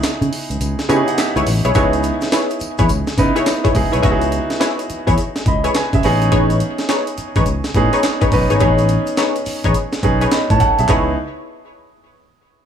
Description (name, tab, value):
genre	R&B, new jack swing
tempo	105 BPM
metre	4/4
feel	swing 64% on 16ths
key	C# minor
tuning	A4 = 441 Hz
part	clear concert grand piano	accompaniment	0.0-11.2 s	B3 to B5	-19 LUFS	right 2 dB	none
part	fingered electric bass	bass	0.0-11.2 s	G#1 to C#3	-18 LUFS	equal	none
part	breakbeat sampler-style drum kit	drums	0.0-11.1 s	handclaps, hi-hat, kick drum, snare drum, tambourine	-20 LUFS	equal	none
part	tube shaker	percussion	0.0-11.2 s	none	-37 LUFS	left 11 dB	none
part	funky polysynth comp	stabs	0.9-11.1 s	D#4 to C#5	-21 LUFS	left 3 dB	chorus, digital delay
room	light reverb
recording	small room ambience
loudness	-14 LUFS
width	side -8 dB against mid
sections	0.0-1.7 A section; 1.7-10.9 B section; 10.9-12.7 C section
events	break 0.0-1.7; grand piano fill 0.6-1.7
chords	0.0 C#m7; 6.0 Amaj9#11; 10.9 C#m7